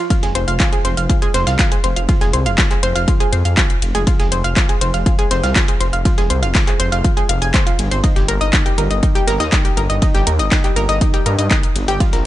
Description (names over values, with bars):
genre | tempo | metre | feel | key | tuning
melodic techno | 121 BPM | 4/4 | straight | F minor | A4 = 440 Hz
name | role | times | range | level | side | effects
analog pluck | arpeggios | 0.0-12.2 s | Eb4 to Ab5 | -20 LUFS | equal | chorus, sidechain pumping, ping-pong delay
dusty soul sampler-style drum kit | drums | 0.1-12.2 s | hi-hat, ride cymbal, snare drum | -32 LUFS | right 2 dB | none
electronic kick drum | drums | 0.1-12.1 s | none | -15 LUFS | equal | overdrive
house drum kit | drums | 0.1-12.2 s | handclaps, hi-hat | -21 LUFS | left 2 dB | sidechain pumping on hats
dark detuned saw bass | bass | 0.2-12.2 s | F1 to G2 | -18 LUFS | equal | sidechain pumping
room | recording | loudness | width
little or no reverb | nothing above 10.3 kHz | -13 LUFS | side -14 dB against mid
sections
0.0-12.3 A section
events
none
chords
0.1 Fm; 8.0 Eb/G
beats
| 0.10 0.60 1.09 1.59 | 2.09 2.58 3.08 3.57 | 4.07 4.57 5.06 5.56 | 6.05 6.55 7.04 7.54 | 8.04 8.53 9.03 9.52 | 10.02 10.52 11.01 11.51 | 12.00